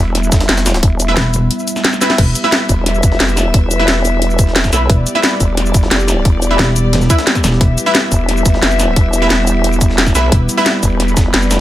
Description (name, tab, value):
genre	dark technical drum and bass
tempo	177 BPM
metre	4/4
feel	straight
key	E phrygian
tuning	A4 = 440 Hz
part	dark analog pad	sustained chords	0.0-11.6 s	G3 to E5	-21 LUFS	right 1 dB	chorus, sidechain pumping
part	vowel-sweep wobble bass	bass	0.0-11.6 s	E1 to B1	-16 LUFS	equal	chorus
part	breakbeat sampler-style drum kit	drums	0.1-11.6 s	hi-hat, snare drum	-25 LUFS	equal	none
part	drum and bass drum kit	drums	0.1-11.6 s	crash cymbal, hi-hat, shaker, snare drum	-16 LUFS	equal	none
part	electronic kick drum	drums	0.3-11.2 s	none	-12 LUFS	equal	overdrive
part	orchestra-hit-like synth stab	stabs	1.1-10.6 s	E4 to E5	-20 LUFS	right 1 dB	built-in reverb, dub echo
part	metallic wobble bass	bass	1.2-2.3, 4.9-7.8, 10.3-10.5 s	E1	-14 LUFS	equal	chorus, sidechain pumping
part	warm studio string section	texture	2.2-11.6 s	B3 to E5	-21 LUFS	left 3 dB	sidechain pumping
room	little or no reverb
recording	none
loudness	-10 LUFS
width	side -14 dB against mid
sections	0.0-2.2 A section; 2.2-11.6 A section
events	drop 0.0-2.2, 2.2-11.6; drum fill 2.0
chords	0.0 Em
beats	0.15 0.49 | 0.83 1.17 1.51 1.84 | 2.18 2.52 2.86 3.20 | 3.54 3.88 4.22 4.56 | 4.90 5.24 5.57 5.91 | 6.25 6.59 6.93 7.27 | 7.61 7.95 8.29 8.62 | 8.96 9.30 9.64 9.98 | 10.32 10.66 11.00 11.34